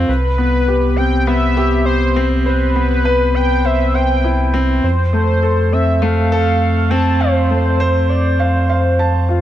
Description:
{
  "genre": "piano and strings electronica",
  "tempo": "101 BPM",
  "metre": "4/4",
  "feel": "straight",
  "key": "unclear",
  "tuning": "A4 = 440 Hz",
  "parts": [
    { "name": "warm concert grand piano", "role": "riff", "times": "0.0-9.4 s", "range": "A3 to A5", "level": "-17 LUFS", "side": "left 1 dB", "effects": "none" },
    { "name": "round analog bass", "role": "bass", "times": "0.0-9.4 s", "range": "C2 to F2", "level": "-16 LUFS", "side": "equal", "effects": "none" },
    { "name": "warm velvety synth lead", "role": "melody", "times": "0.1-9.3 s", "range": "B4 to A5", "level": "-20 LUFS", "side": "equal", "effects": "chorus, tape echo" }
  ],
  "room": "light reverb, small room ambience",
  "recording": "none",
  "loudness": "-13 LUFS",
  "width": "side -12 dB against mid",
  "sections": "0.0-9.4 A section",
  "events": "none",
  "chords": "0.1 Cmaj7; 4.8 F",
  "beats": "| 0.09 0.68 1.27 1.87 | 2.46 3.06 3.65 4.24 | 4.84 5.43 6.03 6.62 | 7.21 7.81 8.40 9.00"
}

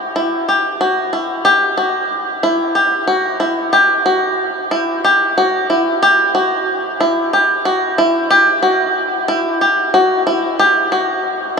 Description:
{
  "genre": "progressive instrumental, progressive",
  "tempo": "184 BPM (eighths)",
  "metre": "7/8",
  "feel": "straight",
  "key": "unclear",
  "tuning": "A4 = 444 Hz",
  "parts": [
    { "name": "bluegrass banjo", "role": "solo", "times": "0.0-11.6 s", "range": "E4 to G4", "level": "-12 LUFS", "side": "equal", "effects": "none" }
  ],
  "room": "wet huge ambient reverb, RT60 8.9 s",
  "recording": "in a vast, echoing space",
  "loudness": "-12 LUFS",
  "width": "side -5 dB against mid",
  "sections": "0.0-1.5 A section; 1.5-10.6 B section; 10.6-11.6 A section",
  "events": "none",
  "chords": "none",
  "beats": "0.16 0.49 0.81 1.14 | 1.46 1.79 2.11 2.44 2.76 3.09 3.41 | 3.74 4.06 4.39 4.71 5.04 5.37 5.69 | 6.02 6.34 6.67 7.00 7.32 7.65 7.97 | 8.30 8.63 8.95 9.28 9.61 9.93 10.26 | 10.59 10.91 11.24 11.57"
}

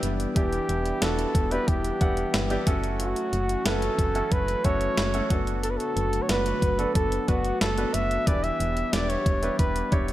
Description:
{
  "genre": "1980s-style pop",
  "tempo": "91 BPM",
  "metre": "4/4",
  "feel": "straight",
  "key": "E dorian",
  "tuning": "A4 = 438 Hz",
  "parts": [
    { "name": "clear baby grand piano", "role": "accompaniment", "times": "0.0-10.1 s", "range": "E3 to F#5", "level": "-31 LUFS", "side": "equal", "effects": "none" },
    { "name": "chorused pulse-width pad", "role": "sustained chords", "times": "0.0-10.1 s", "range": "D3 to G4", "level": "-33 LUFS", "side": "equal", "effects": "none" },
    { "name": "solid FM bass", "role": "bass", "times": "0.0-10.1 s", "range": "E1 to G1", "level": "-30 LUFS", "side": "equal", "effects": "none" },
    { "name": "clean 12-bit digital drum machine", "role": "drums", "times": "0.0-10.1 s", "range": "hi-hat, kick drum, snare drum", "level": "-26 LUFS", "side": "equal", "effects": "gated reverb" },
    { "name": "warm flugelhorn", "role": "melody", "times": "0.4-10.0 s", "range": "F#4 to E5", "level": "-28 LUFS", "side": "equal", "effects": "digital delay" }
  ],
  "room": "light reverb, digital ambience",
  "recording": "none",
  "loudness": "-23 LUFS",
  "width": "side -14 dB against mid",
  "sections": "0.0-10.1 A section",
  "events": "none",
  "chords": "0.0 Em7; 2.7 F#m7; 5.3 D6/F#; 8.3 Em7",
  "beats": "| 0.36 1.02 1.68 2.34 | 3.00 3.66 4.32 4.98 | 5.64 6.29 6.95 7.61 | 8.27 8.93 9.59"
}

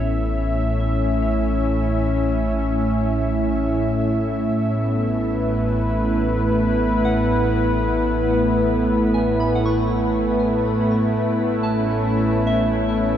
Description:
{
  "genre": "ambient",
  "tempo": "72 BPM",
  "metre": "4/4",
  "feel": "straight",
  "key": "unclear",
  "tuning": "A4 = 440 Hz",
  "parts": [
    { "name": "warm analog pad", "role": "sustained chords", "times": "0.0-13.2 s", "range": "A2 to E5", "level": "-18 LUFS", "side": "equal", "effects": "chorus, shimmer reverb" },
    { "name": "soft synth bell", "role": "arpeggios", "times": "0.0-13.2 s", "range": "A4 to C#6", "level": "-33 LUFS", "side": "equal", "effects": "chorus, tape echo, shimmer reverb" },
    { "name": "warm sub bass", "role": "bass", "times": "0.0-13.2 s", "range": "A1", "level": "-27 LUFS", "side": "equal", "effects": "none" }
  ],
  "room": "wet huge ambient reverb, RT60 8.1 s",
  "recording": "dark, warm production, nothing above 7.8 kHz",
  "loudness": "-18 LUFS",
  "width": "side -10 dB against mid",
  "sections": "0.0-13.2 A section",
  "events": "fade-in on synth bell 0.0-13.2",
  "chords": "0.0 Esus4/A",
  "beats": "0.39 | 1.23 2.06 2.89 3.73 | 4.56 5.39 6.22 7.06 | 7.89 8.72 9.56 10.39 | 11.22 12.06 12.89"
}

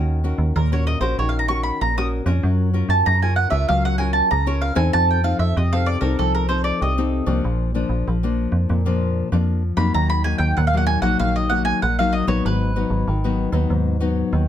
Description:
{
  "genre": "samba and choro",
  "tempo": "96 BPM",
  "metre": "4/4",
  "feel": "straight",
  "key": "Eb minor",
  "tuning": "A4 = 440 Hz",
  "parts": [
    { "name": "nylon-string guitar", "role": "accompaniment", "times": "0.0-14.5 s", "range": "Ab2 to Bb4", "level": "-23 LUFS", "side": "left 5 dB", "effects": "none" },
    { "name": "metallic FM bass", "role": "bass", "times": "0.0-14.5 s", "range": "Ab1 to Gb2", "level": "-20 LUFS", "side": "right 1 dB", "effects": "none" },
    { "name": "mandolin", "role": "melody", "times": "0.6-13.7 s", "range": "A4 to Eb6", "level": "-22 LUFS", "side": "right 2 dB", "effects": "none" }
  ],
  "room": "moderate studio reverb, RT60 0.7 s",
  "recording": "none",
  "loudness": "-18 LUFS",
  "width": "side -10 dB against mid",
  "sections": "0.0-14.5 A section",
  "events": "mandolin solo 0.0-14.5",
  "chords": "0.0 Ebm7; 2.4 Gbmaj7; 4.9 F7; 7.4 Bb; 9.9 Ebm; 12.4 Abm7",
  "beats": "0.55 1.18 1.81 | 2.43 3.06 3.69 4.31 | 4.94 5.56 6.19 6.82 | 7.44 8.07 8.69 9.32 | 9.95 10.57 11.20 11.82 | 12.45 13.07 13.70 14.32"
}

